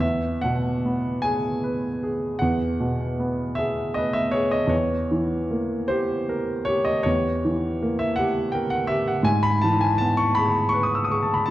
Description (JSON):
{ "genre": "classical, romantic nocturne for solo piano", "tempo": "49-56 BPM (dotted quarters)", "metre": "12/8", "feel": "rubato", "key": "E major", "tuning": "A4 = 440 Hz", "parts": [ { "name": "warm grand piano", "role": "solo", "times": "0.0-11.5 s", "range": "E2 to E6", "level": "-21 LUFS", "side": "equal", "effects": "none" } ], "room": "moderate recital hall reverb, RT60 1.4 s", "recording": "dark, warm production", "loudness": "-21 LUFS", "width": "side -14 dB against mid", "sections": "0.0-11.5 A section", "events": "none", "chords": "0.0 E; 4.7 Edim7; 9.3 E/G#" }